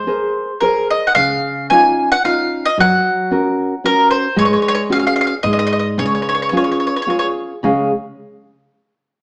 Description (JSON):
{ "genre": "italian folk, Italian serenade", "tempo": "111 BPM", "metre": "3/4", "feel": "rubato", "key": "Db major", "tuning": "A4 = 441 Hz", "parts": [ { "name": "bowl-back mandolin", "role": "melody", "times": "0.0-7.3 s", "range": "Bb4 to Ab5", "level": "-18 LUFS", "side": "equal", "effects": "none" }, { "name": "nylon-string guitar", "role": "accompaniment", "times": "0.0-7.9 s", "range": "Db3 to F5", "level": "-20 LUFS", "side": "equal", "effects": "none" }, { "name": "upright bass", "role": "bass", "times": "1.2-7.9 s", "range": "Db2 to Ab2", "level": "-25 LUFS", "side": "equal", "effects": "none" } ], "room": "moderate large studio reverb, RT60 1.2 s", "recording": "band playing live in one room, small speaker sound", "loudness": "-16 LUFS", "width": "mono", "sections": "0.0-7.6 A section; 7.6-9.2 B section", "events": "none", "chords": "0.0 Abadd9; 1.2 Dbadd9; 2.8 Gb; 4.4 Ab7sus4; 5.4 Ab5; 6.0 Db" }